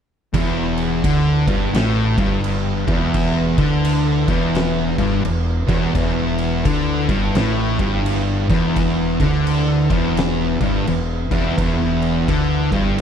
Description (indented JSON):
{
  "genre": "stoner and doom metal",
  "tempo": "85 BPM",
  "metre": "4/4",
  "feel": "swing 62% on 8ths",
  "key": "E minor",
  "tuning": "A4 = 440 Hz",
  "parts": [
    { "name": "metallic inharmonic drone", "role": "sustained chords", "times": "1.1-13.0 s", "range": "E3 to B4", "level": "-32 LUFS", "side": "left 1 dB", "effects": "chorus, built-in reverb" },
    { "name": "distorted electric guitar", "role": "riff", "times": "0.3-13.0 s", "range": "E2 to D3", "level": "-25 LUFS", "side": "left 1 dB", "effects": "overdrive" },
    { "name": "thick fuzz guitar", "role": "riff", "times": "0.3-13.0 s", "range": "E2 to D3", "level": "-22 LUFS", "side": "left 9 dB", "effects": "distortion" },
    { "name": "thick fuzz guitar", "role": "riff", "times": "0.3-13.0 s", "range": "E2 to D3", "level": "-22 LUFS", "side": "right 8 dB", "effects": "distortion" },
    { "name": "growling fingered electric bass", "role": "bass", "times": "0.3-13.0 s", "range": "E1 to D2", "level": "-24 LUFS", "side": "equal", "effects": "overdrive" },
    { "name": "oversized low-tuned drum kit", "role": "drums", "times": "0.3-13.0 s", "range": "crash cymbal, kick drum, snare drum", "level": "-23 LUFS", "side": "equal", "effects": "none" }
  ],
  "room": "little or no reverb",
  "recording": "dark, warm production",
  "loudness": "-16 LUFS",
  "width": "side -8 dB against mid",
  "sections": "0.3-13.0 A section",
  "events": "none",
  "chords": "0.3 Em"
}